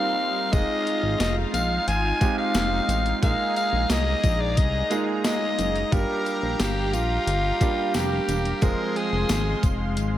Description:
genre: 1980s-style pop.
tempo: 89 BPM.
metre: 4/4.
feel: straight.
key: F dorian.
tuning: A4 = 441 Hz.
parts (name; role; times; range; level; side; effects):
raspy alto saxophone; melody; 0.0-9.6 s; F4 to Ab5; -26 LUFS; left 1 dB; shimmer reverb.
clear concert grand piano; accompaniment; 0.0-10.2 s; F3 to Ab4; -28 LUFS; right 4 dB; shimmer reverb.
brassy analog pad; sustained chords; 0.0-10.2 s; G3 to C6; -32 LUFS; left 2 dB; chorus, shimmer reverb.
chorused synth bass; bass; 0.5-10.2 s; E1 to C2; -26 LUFS; left 1 dB; none.
clean 12-bit digital drum machine; drums; 0.5-10.1 s; hi-hat, kick drum, snare drum, tambourine; -25 LUFS; left 1 dB; gated reverb.
tambourine; percussion; 0.5-10.1 s; none; -42 LUFS; left 10 dB; none.
room: light reverb.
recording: none.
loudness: -21 LUFS.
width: side -12 dB against mid.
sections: 0.0-10.2 A section.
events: none.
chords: 0.0 Cm7/G; 0.5 Fm7; 3.2 Bb7sus4; 5.9 Gm7; 8.6 Fm.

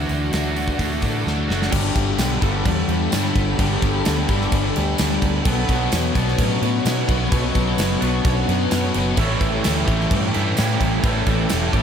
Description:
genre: rock, shoegaze and dream pop.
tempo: 129 BPM.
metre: 4/4.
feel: straight.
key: G lydian.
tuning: A4 = 441 Hz.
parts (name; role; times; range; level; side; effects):
soft additive organ-like pad; sustained chords; 0.0-11.8 s; F#4 to D6; -30 LUFS; equal; ensemble chorus, built-in reverb.
twelve-string electric guitar; arpeggios; 0.0-11.8 s; E3 to A4; -30 LUFS; right 10 dB; wide subtle chorus, tape echo.
cranked stack guitar; riff; 0.0-1.7, 9.2-11.8 s; A2 to F#4; -26 LUFS; right 8 dB; overdrive, reverse reverb.
thick fuzz guitar; riff; 0.0-11.8 s; G2 to D4; -25 LUFS; left 11 dB; distortion, ensemble chorus.
vintage muted fingered electric bass; bass; 0.0-11.8 s; E1 to B2; -23 LUFS; equal; none.
gated 80s drum kit; drums; 0.1-11.8 s; crash cymbal, hi-hat, kick drum, snare drum; -23 LUFS; equal; none.
raw garage guitar; riff; 1.7-11.8 s; G2 to B3; -25 LUFS; left 1 dB; overdrive.
tambourine; percussion; 2.2-11.6 s; none; -33 LUFS; right 8 dB; none.
room: small room ambience.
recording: none.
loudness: -17 LUFS.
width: side -8 dB against mid.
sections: 0.0-1.7 A section; 1.7-11.8 B section.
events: drum fill 1.3-1.7.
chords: 0.0 Dadd9; 1.7 Gadd9; 5.5 Bmadd9; 9.2 A7sus4.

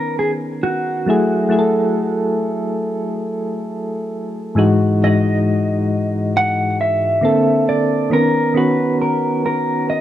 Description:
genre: hip hop.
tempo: 68 BPM.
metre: 4/4.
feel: swing 56% on 16ths.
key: unclear.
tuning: A4 = 441 Hz.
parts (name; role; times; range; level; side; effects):
mellow electric guitar; melody; 0.0-10.0 s; F#4 to F#5; -20 LUFS; right 1 dB; none.
soft electric-piano-like synth keys; accompaniment; 0.0-10.0 s; G#2 to A#4; -17 LUFS; equal; chorus, tremolo, cassette tape.
room: moderate plate reverb, RT60 2.6 s.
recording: dark, warm production.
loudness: -15 LUFS.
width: side -12 dB against mid.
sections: 0.0-10.0 A section.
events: none.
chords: 0.0 Bmaj9; 1.0 F#m9; 4.6 Emaj9/G#; 7.2 A#maj9; 8.1 Bmaj9.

